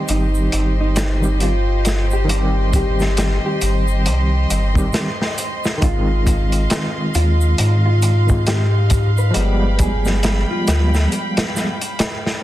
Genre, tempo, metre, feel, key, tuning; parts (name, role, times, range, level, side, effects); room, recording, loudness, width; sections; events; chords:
trip hop; 68 BPM; 4/4; swing 59% on 16ths; C harmonic minor; A4 = 440 Hz
overdriven tine electric piano; accompaniment; 0.0-11.8 s; Eb3 to G4; -24 LUFS; right 1 dB; fast tremolo, tape echo
rich chamber violin section; sustained chords; 0.0-12.4 s; G4 to C6; -26 LUFS; equal
mellow electric guitar; melody; 0.1-10.9 s; Eb4 to B4; -26 LUFS; left 1 dB; tape echo
warm sub bass; bass; 0.1-11.1 s; G1 to Ab2; -17 LUFS; equal
crunchy breakbeat drum kit; drums; 0.1-12.4 s; hi-hat, kick drum, snare drum; -21 LUFS; equal
egg shaker; percussion; 0.1-12.2 s; -33 LUFS; right 3 dB
small room reverb; dense, heavily limited modern master; -15 LUFS; side -14 dB against mid
0.0-12.4 A section
break 11.1-12.4
0.0 Cm; 5.8 Ab6; 9.4 G7b9